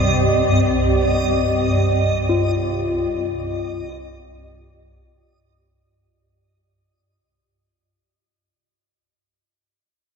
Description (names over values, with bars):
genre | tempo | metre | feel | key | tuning
ambient | free time | none | none | C minor | A4 = 435 Hz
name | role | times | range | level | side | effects
dark symphonic cello section | sustained chords | 0.0-5.8 s | C3 to C5 | -25 LUFS | left 2 dB | none
swarming drone | drone | 0.0-5.9 s | C2 to G2 | -20 LUFS | right 1 dB | built-in reverb
backwards swelling texture | texture | 0.0-5.9 s | Eb5 | -23 LUFS | right 1 dB | built-in reverb
gamelan-type bossed gongs | arpeggios | 2.3-8.7 s | F4 | -23 LUFS | left 5 dB | none
room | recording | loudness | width
wet huge ambient reverb, RT60 7.7 s | cassette tape | -17 LUFS | side -6 dB against mid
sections
0.0-5.8 A section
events
fade-out on cello section 0.0-5.8; fade-out 0.1-5.8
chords
0.0 C5